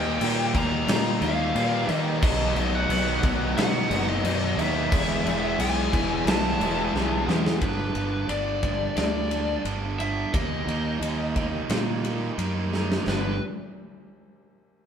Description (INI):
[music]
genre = quiet-loud alternative rock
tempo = 88 BPM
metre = 4/4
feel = straight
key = unclear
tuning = A4 = 441 Hz
[part]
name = lead guitar through a small cranked amp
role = melody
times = 0.0-13.4 s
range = B4 to Bb5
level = -29 LUFS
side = left 1 dB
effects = overdrive
[part]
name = distorted electric guitar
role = riff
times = 0.0-13.4 s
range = G2 to E4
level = -30 LUFS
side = right 5 dB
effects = distortion
[part]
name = sludgy distorted guitar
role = riff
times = 0.0-7.6 s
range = B2 to E4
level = -28 LUFS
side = left 4 dB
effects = overdrive
[part]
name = fuzz fingered electric bass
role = bass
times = 0.0-13.4 s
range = E1 to Eb3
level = -29 LUFS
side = equal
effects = overdrive
[part]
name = big rock drum kit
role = drums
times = 0.2-13.2 s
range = crash cymbal, kick drum, ride cymbal, snare drum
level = -28 LUFS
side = left 1 dB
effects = none
[sound]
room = moderate stone room reverb, RT60 1.0 s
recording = band playing live in one room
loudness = -22 LUFS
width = side -8 dB against mid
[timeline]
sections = 0.0-7.6 A section; 7.6-13.1 B section; 13.1-14.9 C section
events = drum fill 6.9-7.6, 12.7-13.1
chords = 0.0 Eb; 2.2 B; 4.9 E; 7.6 G; 10.3 Eb; 13.1 G